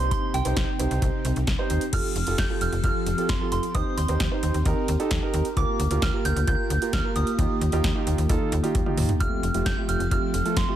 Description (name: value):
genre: synth-pop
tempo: 132 BPM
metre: 4/4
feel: straight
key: unclear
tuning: A4 = 435 Hz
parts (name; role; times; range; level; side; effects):
- soft synth bell; melody; 0.0-10.8 s; G5 to G6; -31 LUFS; right 3 dB; chorus, ping-pong delay
- warm concert grand piano; accompaniment; 0.0-10.8 s; A3 to C5; -29 LUFS; right 5 dB; none
- string machine, violas; sustained chords; 0.0-10.8 s; C3 to A4; -31 LUFS; left 1 dB; ensemble chorus
- slap-like FM bass; bass; 0.0-10.7 s; F1 to Eb2; -26 LUFS; equal; none
- electro analog drum machine; drums; 0.0-10.7 s; crash cymbal, hi-hat, kick drum, snare drum, toms; -27 LUFS; equal; none
room: light reverb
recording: dense, heavily limited modern master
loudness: -22 LUFS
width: side -11 dB against mid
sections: 0.0-1.9 A section; 1.9-10.8 B section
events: drum fill 8.7-9.2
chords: 0.0 Cm; 1.9 Fadd9; 3.7 Cm/Eb; 5.6 Gm7/D; 7.4 Ebadd9; 9.2 Fadd9